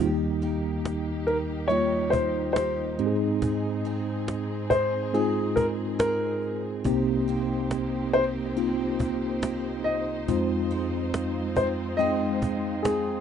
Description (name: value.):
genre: pop ballad.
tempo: 70 BPM.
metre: 4/4.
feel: straight.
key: Ab major.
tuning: A4 = 440 Hz.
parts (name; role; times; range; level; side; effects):
mellow tine electric piano; accompaniment; 0.0-13.2 s; C2 to G5; -27 LUFS; equal; medium stereo tremolo.
clear studio string section; sustained chords; 0.0-13.2 s; Ab3 to C5; -37 LUFS; equal; none.
picked steel-string acoustic guitar; arpeggios; 0.0-13.2 s; F2 to Ab4; -36 LUFS; right 6 dB; none.
cajon; drums; 0.4-13.1 s; none; -30 LUFS; right 1 dB; none.
clear baby grand piano; melody; 1.3-13.2 s; Ab4 to Eb5; -26 LUFS; left 2 dB; none.
room: little or no reverb.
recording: rough home demo mix, nothing above 10.6 kHz.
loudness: -24 LUFS.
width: side -8 dB against mid.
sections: 0.0-13.2 A section.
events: none.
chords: 0.0 Eb; 3.0 Ab; 6.9 Cm7; 10.3 Fm7.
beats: | 0.00 0.85 1.71 2.57 | 3.42 4.28 5.14 6.00 | 6.85 7.71 8.57 9.43 | 10.28 11.14 12.00 12.85.